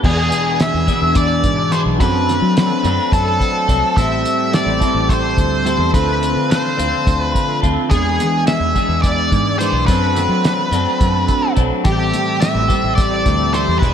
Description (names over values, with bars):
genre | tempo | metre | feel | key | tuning
psychedelic rock | 213 BPM (eighths) | 7/8 | straight | A minor | A4 = 435 Hz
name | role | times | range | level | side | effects
overdriven tonewheel organ | sustained chords | 0.0-13.9 s | E3 to A4 | -26 LUFS | right 2 dB | slow rotary speaker, chorus vibrato
twelve-string electric guitar | riff | 0.0-13.9 s | E2 to A4 | -20 LUFS | left 2 dB | phaser
fingered electric bass | bass | 0.0-13.9 s | E1 to F#3 | -20 LUFS | equal | none
cloth-damped thuddy drum kit | drums | 0.0-13.9 s | crash cymbal, hi-hat, kick drum, snare drum | -19 LUFS | equal | none
octave-fuzz lead guitar | melody | 0.1-13.9 s | G4 to E5 | -18 LUFS | equal | wah, distortion, analog delay
room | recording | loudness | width
moderate lush hall reverb, RT60 2.0 s | dreamy mix soaked in reverb | -14 LUFS | side -8 dB against mid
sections
0.0-13.9 A section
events
none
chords
0.0 E7; 2.0 D7/F#; 4.0 Am7; 5.9 Dm7; 7.9 E7; 9.9 D7/F#; 11.9 Am7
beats
| 0.04 0.32 0.60 0.88 1.16 1.44 1.73 | 2.01 2.29 2.57 2.85 3.13 3.41 3.69 | 3.97 4.25 4.53 4.82 5.10 5.38 5.66 | 5.94 6.22 6.50 6.78 7.07 7.35 7.63 | 7.91 8.19 8.47 8.76 9.04 9.32 9.60 | 9.88 10.16 10.44 10.72 11.01 11.29 11.57 | 11.85 12.13 12.41 12.70 12.98 13.26 13.54 | 13.82